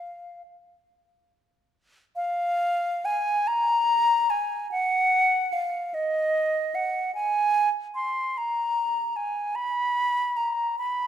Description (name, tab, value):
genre	classical, free, expressive piece for unaccompanied flute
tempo	29-52 BPM (dotted quarters)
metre	6/8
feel	rubato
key	unclear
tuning	A4 = 440 Hz
part	concert flute	solo	0.0-11.1 s	Eb5 to C6	-23 LUFS	equal	none
room	moderate concert hall reverb, RT60 1.8 s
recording	none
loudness	-23 LUFS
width	side -10 dB against mid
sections	0.0-2.2 A section; 2.2-11.1 A section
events	none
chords	none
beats	0.45 | 2.17 3.47 | 4.70 5.94 | 7.15 8.36 | 9.54 10.75